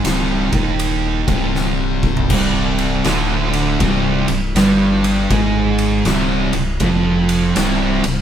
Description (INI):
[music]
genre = stoner and doom metal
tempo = 80 BPM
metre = 4/4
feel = swing 64% on 8ths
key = C minor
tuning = A4 = 440 Hz
[part]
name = thick fuzz guitar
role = riff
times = 0.0-8.2 s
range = C2 to Ab3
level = -21 LUFS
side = left 5 dB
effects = distortion
[part]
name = thick fuzz guitar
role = riff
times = 0.0-8.2 s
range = C2 to Ab3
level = -20 LUFS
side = right 7 dB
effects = distortion
[part]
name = rubbery square bass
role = bass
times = 0.0-8.2 s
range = C1 to Ab1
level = -22 LUFS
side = left 1 dB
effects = overdrive
[part]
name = oversized low-tuned drum kit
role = drums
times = 0.0-8.2 s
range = crash cymbal, kick drum, ride cymbal, snare drum, toms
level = -21 LUFS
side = equal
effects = none
[part]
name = fuzz guitar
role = riff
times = 2.3-8.2 s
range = C2 to Ab3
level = -21 LUFS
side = right 2 dB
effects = distortion
[sound]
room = light reverb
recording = band playing live in one room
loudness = -14 LUFS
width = side -9 dB against mid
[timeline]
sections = 0.0-2.3 A section; 2.3-8.2 B section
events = drum fill 1.6-2.3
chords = 0.0 Cm; 2.3 C5